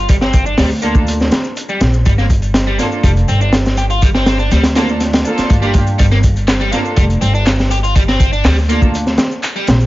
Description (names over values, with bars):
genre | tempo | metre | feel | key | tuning
breakbeat, breaks | 122 BPM | 4/4 | straight | G minor | A4 = 443 Hz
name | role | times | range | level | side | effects
biting overdriven guitar | riff | 0.0-9.7 s | G3 to G4 | -20 LUFS | equal | tube saturation, low-pass filter, dub echo
upright bass | bass | 0.0-9.9 s | F1 to G2 | -15 LUFS | equal | none
crunchy breakbeat drum kit | drums | 0.1-9.8 s | hi-hat, kick drum, snare drum | -14 LUFS | equal | none
electronic shaker and handclaps | drums | 0.1-9.9 s | none | -27 LUFS | left 1 dB | none
dark studio string section | stabs | 0.8-8.9 s | Bb3 to A4 | -21 LUFS | right 2 dB | dub echo
room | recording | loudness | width
studio reverb | vinyl crackle, nothing above 7.5 kHz | -11 LUFS | side -17 dB against mid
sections
0.0-9.9 A section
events
none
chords
0.0 Gm7